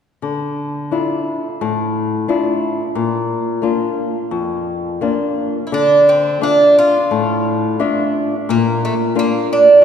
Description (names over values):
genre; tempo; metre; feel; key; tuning
fado-style ballad; 88 BPM; 4/4; rubato; D minor; A4 = 437 Hz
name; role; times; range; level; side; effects
nylon-string guitar; accompaniment; 0.2-9.8 s; F2 to E5; -17 LUFS; left 3 dB; none
Irish bouzouki; melody; 5.7-9.8 s; A3 to F4; -12 LUFS; right 2 dB; none
room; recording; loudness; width
wet church reverb, RT60 3.1 s; recorded in a church or concert hall; -14 LUFS; side -8 dB against mid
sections
0.2-5.7 A section; 5.7-9.8 B section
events
none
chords
0.2 Dmadd9; 3.0 Bb; 5.7 Dmadd9; 8.5 Bb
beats
| 0.23 0.92 1.61 2.29 | 2.96 3.63 4.32 5.01 | 5.72 6.41 7.11 7.80 | 8.48 9.15 9.82